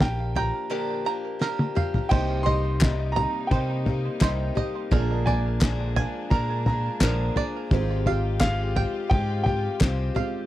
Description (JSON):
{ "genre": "indie folk with a building arrangement", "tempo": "86 BPM", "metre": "4/4", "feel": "straight", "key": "C minor", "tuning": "A4 = 440 Hz", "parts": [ { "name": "warm upright piano", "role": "melody", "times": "0.0-10.1 s", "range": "F5 to C6", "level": "-30 LUFS", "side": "right 1 dB", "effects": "none" }, { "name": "felt-muted upright piano", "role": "accompaniment", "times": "0.0-10.5 s", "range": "Ab1 to Eb5", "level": "-36 LUFS", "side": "right 7 dB", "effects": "none" }, { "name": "picked acoustic archtop guitar", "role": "accompaniment", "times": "0.0-10.5 s", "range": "Bb2 to Ab4", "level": "-32 LUFS", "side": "left 7 dB", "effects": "none" }, { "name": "bluegrass banjo", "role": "arpeggios", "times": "0.0-10.5 s", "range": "Bb4 to Bb5", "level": "-32 LUFS", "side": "right 8 dB", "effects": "tape echo" }, { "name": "fingered electric bass", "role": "bass", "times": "0.0-10.1 s", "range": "Ab1 to C3", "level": "-27 LUFS", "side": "equal", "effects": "none" }, { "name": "cloth-damped thuddy drum kit", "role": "drums", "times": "0.0-10.3 s", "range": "crash cymbal, kick drum, snare drum, toms", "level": "-23 LUFS", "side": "equal", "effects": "none" }, { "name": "warm studio string section", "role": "sustained chords", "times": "2.1-10.5 s", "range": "C3 to G4", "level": "-37 LUFS", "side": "left 2 dB", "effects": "none" }, { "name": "group handclap", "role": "percussion", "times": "2.8-10.0 s", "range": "none", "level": "-34 LUFS", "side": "left 5 dB", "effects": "none" } ], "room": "light reverb", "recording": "dry, close 1970s-style studio recording", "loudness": "-22 LUFS", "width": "side -14 dB against mid", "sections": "0.0-2.1 A section; 2.1-10.5 B section", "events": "drum fill 1.4-2.1", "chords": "0.0 Gm7/Bb; 2.1 Cm7; 4.9 Bb7; 7.7 Fmadd9/Ab" }